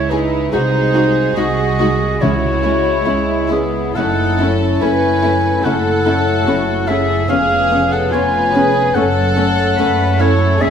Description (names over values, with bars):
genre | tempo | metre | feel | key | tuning
classical, slow romantic movement for symphony orchestra | 72 BPM | 4/4 | rubato | unclear | A4 = 439 Hz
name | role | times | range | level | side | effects
warm clarinet | second line | 0.0-10.7 s | G#4 to G#5 | -18 LUFS | equal | none
warm symphonic violin section | second line | 0.0-10.7 s | B3 to B4 | -21 LUFS | left 1 dB | none
clear French horn section | sustained chords | 0.0-10.7 s | G#3 to F#4 | -22 LUFS | left 2 dB | none
concert harp | arpeggios | 0.0-10.7 s | E2 to D#6 | -24 LUFS | left 7 dB | none
dark symphonic double bass section | bass | 0.0-10.7 s | E1 to C#2 | -20 LUFS | right 3 dB | none
rich symphonic cello section | bass | 0.0-10.7 s | C#4 to B4 | -24 LUFS | right 3 dB | none
warm symphonic violin section | melody | 0.1-10.7 s | C#4 to G#4 | -25 LUFS | left 5 dB | none
dark symphonic viola section | accompaniment | 0.1-10.7 s | G#3 to E4 | -22 LUFS | right 1 dB | none
timpani | percussion | 2.2-3.5 s | C#3 | -22 LUFS | right 1 dB | none
room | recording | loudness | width
wet scoring stage reverb, RT60 1.4 s | none | -13 LUFS | side -8 dB against mid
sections
0.0-10.7 A section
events
none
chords
0.0 C#m; 0.5 G#7/B#; 2.2 C#m; 4.0 F#m7; 7.3 C#7/E#; 9.0 F#m